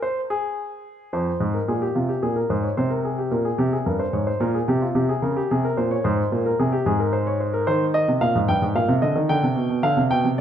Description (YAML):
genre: classical, baroque-style two-part invention for grand piano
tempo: 73 BPM (dotted quarters)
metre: 12/8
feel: straight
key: F minor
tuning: A4 = 437 Hz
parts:
  - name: warm grand piano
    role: solo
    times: 0.0-10.4 s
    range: F2 to G5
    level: -20 LUFS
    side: equal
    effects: none
room: moderate recital hall reverb, RT60 1.5 s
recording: minimal, uncompressed stereo recording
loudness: -20 LUFS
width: side -9 dB against mid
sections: 0.0-1.1 A section; 1.1-10.4 B section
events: none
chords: 0.0 N.C.; 1.1 Fm; 2.8 C5; 4.4 C5/Bb; 6.0 Abadd9; 7.7 Cm; 9.3 G